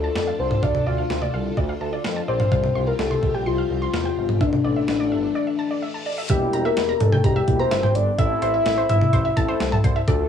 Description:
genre	synth-pop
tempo	127 BPM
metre	4/4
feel	straight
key	unclear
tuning	A4 = 440 Hz
part	soft octave-layered synth lead	melody	0.0-10.3 s	D4 to F5	-23 LUFS	left 3 dB	chorus, analog delay, plate reverb
part	string machine, full ensemble	sustained chords	0.0-6.3 s	C3 to A4	-29 LUFS	left 2 dB	ensemble chorus, cassette tape, plate reverb
part	wide unison pluck	arpeggios	0.0-10.2 s	C5 to C6	-31 LUFS	right 2 dB	cassette tape, analog delay, plate reverb
part	smooth synth bass	bass	0.0-10.2 s	E1 to F2	-26 LUFS	equal	none
part	clean 12-bit digital drum machine	drums	0.2-10.2 s	hi-hat, kick drum, snare drum, toms	-22 LUFS	equal	overdrive
part	reverse cymbal	sound effects	5.6-6.3 s	none	-33 LUFS	left 5 dB	none
part	mellow synth brass	accompaniment	6.3-10.3 s	Bb3 to A4	-29 LUFS	left 1 dB	chorus, cassette tape, plate reverb
room	moderate studio reverb, RT60 0.6 s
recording	home recording on cassette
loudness	-19 LUFS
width	side -8 dB against mid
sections	0.0-6.3 A section; 6.3-10.3 B section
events	break 5.4-6.3; reverse cymbal 5.6-6.3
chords	0.0 Dm; 2.5 Csus4; 4.4 Asus4; 6.3 Edim; 8.2 Am

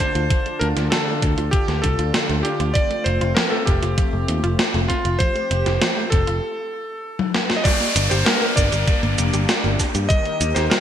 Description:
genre	synthwave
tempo	98 BPM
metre	4/4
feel	straight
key	G minor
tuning	A4 = 443 Hz
part	clear electric grand piano	melody	0.0-10.8 s	F4 to Eb5	-24 LUFS	equal	ping-pong delay
part	warm analog pad	sustained chords	0.0-10.8 s	D3 to A5	-28 LUFS	left 1 dB	chorus, sidechain pumping
part	wide unison pluck	arpeggios	0.0-10.8 s	F3 to G4	-30 LUFS	right 2 dB	digital delay
part	electronic kick drum	drums	0.0-10.2 s	none	-20 LUFS	equal	overdrive
part	gated 80s digital drum machine	drums	0.0-10.8 s	cabasa, crash cymbal, hi-hat, snare drum, toms	-22 LUFS	equal	gated reverb, gated reverb snare
part	picked electric bass	bass	0.2-10.7 s	F1 to G2	-21 LUFS	equal	tube saturation
part	downlifter	sound effects	7.7-10.8 s	none	-26 LUFS	equal	none
room	moderate lush hall reverb, RT60 1.9 s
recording	bright 1980s-style digital production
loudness	-17 LUFS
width	side -10 dB against mid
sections	0.0-7.7 A section; 7.7-10.8 B section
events	break 6.4-7.7; drum fill 7.2-7.7; band accent 7.5-7.8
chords	0.0 Dm; 2.8 F; 7.7 Gm; 10.1 Eb

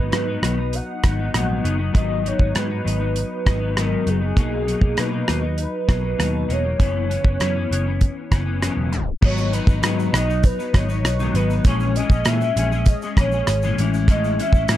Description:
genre	indie pop, bedroom pop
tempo	99 BPM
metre	4/4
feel	straight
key	G# minor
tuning	A4 = 439 Hz
part	warm velvety synth lead	melody	0.0-14.8 s	G#4 to F#5	-27 LUFS	equal	lush chorus
part	clean electric guitar	accompaniment	0.0-14.8 s	F#2 to G#4	-24 LUFS	left 3 dB	ensemble chorus, warbly pitch drift
part	vintage muted picked electric bass	bass	0.0-14.8 s	E1 to B2	-23 LUFS	equal	none
part	damped 70s drum kit	drums	0.1-14.8 s	crash cymbal, hi-hat, kick drum, rim click, shaker	-18 LUFS	equal	none
room	light reverb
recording	tape stop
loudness	-18 LUFS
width	side -13 dB against mid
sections	0.0-9.2 A section; 9.2-14.8 B section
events	tape stop 8.9-9.2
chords	0.0 G#m7; 4.4 Bmaj7; 6.8 F#7sus4; 9.2 G#m7; 11.6 A#m7b5; 13.8 Amaj7

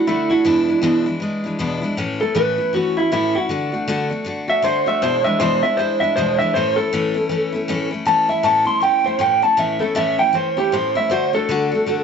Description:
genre	rock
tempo	158 BPM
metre	4/4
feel	swing 60% on 8ths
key	A major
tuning	A4 = 439 Hz
part	electric guitar through a small old amp	melody	0.0-12.0 s	E4 to C6	-17 LUFS	right 1 dB	tape echo
part	picked steel-string acoustic guitar	accompaniment	0.0-12.0 s	E2 to F#4	-22 LUFS	left 2 dB	none
room	wet studio ambience, RT60 0.5 s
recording	nothing above 7.8 kHz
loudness	-16 LUFS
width	side -6 dB against mid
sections	0.0-8.1 A section; 8.1-12.0 A section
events	clean electric guitar solo 0.0-12.0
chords	0.5 E7; 2.0 A; 3.5 D; 5.0 E7; 6.5 A; 11.1 D

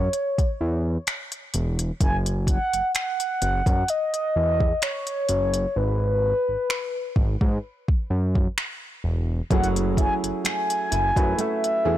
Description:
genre	contemporary R&B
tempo	64 BPM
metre	4/4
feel	swing 54% on 16ths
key	unclear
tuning	A4 = 442 Hz
part	mellow horn-like synth lead	melody	0.0-12.0 s	B4 to G#5	-25 LUFS	equal	chorus
part	fat analog bass	bass	0.0-12.0 s	E1 to G#2	-24 LUFS	equal	none
part	smooth R&B drum kit	drums	0.1-11.8 s	finger snaps, hi-hat, kick drum	-24 LUFS	equal	overdrive, soft clipping on snare
part	dark concert grand piano	accompaniment	9.5-12.0 s	A3 to B4	-29 LUFS	left 6 dB	none
part	nylon-string guitar	arpeggios	9.5-12.0 s	F#3 to G#4	-28 LUFS	right 10 dB	none
room	little or no reverb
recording	blown-out, overdriven recording, overdrive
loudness	-21 LUFS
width	side -13 dB against mid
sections	0.0-12.0 A section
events	hi-hats muted 5.8-9.5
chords	0.0 N.C.; 2.0 Emaj7sus2/F#; 5.8 G#m7; 9.5 F#m9

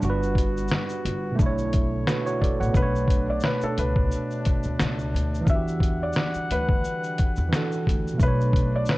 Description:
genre	lo-fi hip hop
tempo	88 BPM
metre	4/4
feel	swing 56% on 16ths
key	B minor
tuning	A4 = 440 Hz
part	barky tine electric piano	accompaniment	0.0-9.0 s	B2 to F#5	-28 LUFS	right 2 dB	low-pass filter
part	bright brass ensemble	sustained chords	0.0-9.0 s	B2 to F#5	-34 LUFS	left 2 dB	low-pass filter
part	upright bass	bass	0.0-8.8 s	G1 to E2	-28 LUFS	equal	none
part	lo-fi sampler-style drum kit	drums	0.0-9.0 s	hi-hat, kick drum, shaker, snare drum	-24 LUFS	equal	vintage 12-bit sampler grit
part	felt-muted upright piano	melody	2.8-9.0 s	A4 to E5	-30 LUFS	left 1 dB	low-pass filter, tape echo
room	small room ambience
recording	cassette tape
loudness	-22 LUFS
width	side -19 dB against mid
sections	0.0-2.7 A section; 2.7-9.0 B section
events	none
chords	0.0 Gmaj7; 1.4 Bm11; 2.7 Bm9; 5.5 Em9; 8.2 Bm9

